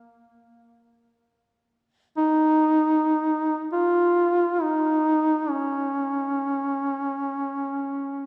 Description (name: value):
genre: caucasian folk, Caucasian lament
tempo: free time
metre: none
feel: none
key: Bb minor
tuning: A4 = 440 Hz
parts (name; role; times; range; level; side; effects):
- mellow duduk; solo; 0.0-8.3 s; Db4 to F4; -24 LUFS; equal; none
room: wet church reverb, RT60 3.2 s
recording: none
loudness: -24 LUFS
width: mono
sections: 0.0-8.3 A section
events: none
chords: none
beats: free time